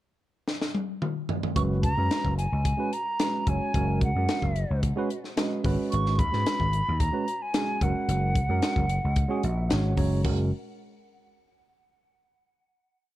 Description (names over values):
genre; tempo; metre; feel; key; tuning
electric jazz fusion; 110 BPM; 4/4; straight; F# major; A4 = 440 Hz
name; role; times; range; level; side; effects
crisp fusion drum kit; drums; 0.5-10.4 s; crash cymbal, hi-hat, kick drum, snare drum, toms; -28 LUFS; left 1 dB; none
bright tine electric piano; accompaniment; 1.5-10.5 s; G#3 to A#5; -31 LUFS; right 3 dB; analog chorus
hollow concert flute; melody; 1.6-9.7 s; F#5 to C#6; -31 LUFS; right 1 dB; none
vintage slap bass; bass; 1.6-10.5 s; F#1 to G#2; -26 LUFS; equal; none
room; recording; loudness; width
studio reverb; dark, warm production; -24 LUFS; side -15 dB against mid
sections
0.0-1.6 pickup bar; 1.6-10.3 A section; 10.3-12.4 final chord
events
drum fill 0.5-1.6; tine electric piano fill 5.1-5.9, 9.2-10.3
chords
0.0 N.C.; 1.6 F#sus24; 5.6 G#m9; 7.8 F#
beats
0.48 1.02 | 1.56 2.11 2.65 3.20 | 3.74 4.28 4.83 5.37 | 5.92 6.46 7.00 7.54 | 8.09 8.63 9.17 9.71 | 10.25